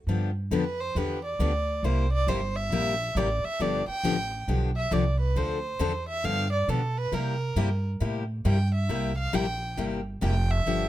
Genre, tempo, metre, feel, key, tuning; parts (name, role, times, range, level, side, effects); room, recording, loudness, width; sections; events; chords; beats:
acoustic string swing (jazz manouche); 136 BPM; 4/4; swing 64% on 8ths; A4 = 440 Hz
picked steel-string acoustic guitar; accompaniment; 0.1-10.9 s; C3 to A4; -29 LUFS; left 5 dB
upright bass; bass; 0.1-10.9 s; F1 to C3; -28 LUFS; right 1 dB
warm violin; melody; 0.5-10.9 s; A4 to G5; -30 LUFS; right 2 dB
light reverb; close, detailed microphones; -25 LUFS; side -14 dB against mid
0.1-10.9 A section
violin solo 0.1-10.9
0.1 G7; 1.8 C7; 3.6 G7; 5.4 Dm7; 6.2 G7; 7.1 C7
| 0.08 0.52 0.96 1.40 | 1.83 2.27 2.71 3.15 | 3.60 4.04 4.48 4.92 | 5.36 5.80 6.24 6.68 | 7.13 7.57 8.01 8.45 | 8.89 9.34 9.78 10.22 | 10.66